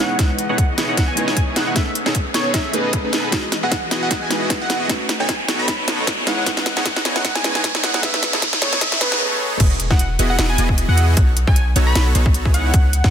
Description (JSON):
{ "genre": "future bass", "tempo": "153 BPM", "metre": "4/4", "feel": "swing 55% on 16ths, half-time", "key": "E major", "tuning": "A4 = 441 Hz", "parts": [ { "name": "plucky unison lead", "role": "melody", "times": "0.0-13.1 s", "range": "B4 to B5", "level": "-25 LUFS", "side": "equal", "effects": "sidechain pumping, tape echo" }, { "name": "soft round pluck", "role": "accompaniment", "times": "0.0-9.2 s", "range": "G#3 to B4", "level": "-28 LUFS", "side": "right 2 dB", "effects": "analog chorus, sidechain pumping, ping-pong delay" }, { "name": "warm symphonic string section", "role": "sustained chords", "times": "0.0-9.2 s", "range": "C#3 to D#5", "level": "-32 LUFS", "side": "left 2 dB", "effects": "none" }, { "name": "dense compressed supersaw", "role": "riff", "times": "0.0-13.1 s", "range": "B3 to D#5", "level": "-23 LUFS", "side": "right 1 dB", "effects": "sidechain pumping, low-pass filter" }, { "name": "warm 808-style bass", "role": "bass", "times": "0.0-13.1 s", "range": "E1 to A2", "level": "-18 LUFS", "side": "equal", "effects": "sidechain pumping, high-pass filter" }, { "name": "riser and impact", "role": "sound effects", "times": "0.4-11.2 s", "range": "none", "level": "-26 LUFS", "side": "equal", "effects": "none" }, { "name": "electronic kick drum", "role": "drums", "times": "0.2-13.1 s", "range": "none", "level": "-18 LUFS", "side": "equal", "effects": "none" }, { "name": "trap drum kit", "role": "drums", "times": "0.2-13.1 s", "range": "crash cymbal, hi-hat, snare drum", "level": "-22 LUFS", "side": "equal", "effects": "soft clipping on snare" } ], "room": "light reverb, digital ambience", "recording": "dense, heavily limited modern master, high-pass filter", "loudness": "-16 LUFS", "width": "side -9 dB against mid", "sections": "0.0-9.6 A section; 9.6-13.1 B section", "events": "build-up 0.0-9.6; drum fill 0.0-9.2; filter sweep 0.0-9.6; riser 0.4-9.2; break 9.2-9.6; drop 9.6-13.1; impact 9.6-11.2", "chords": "0.0 C#m9; 1.8 Amaj9#11; 3.3 Emaj9; 4.9 B9; 6.3 C#m9; 8.0 Amaj9#11; 9.6 Emaj9; 11.2 B9; 12.5 C#m9" }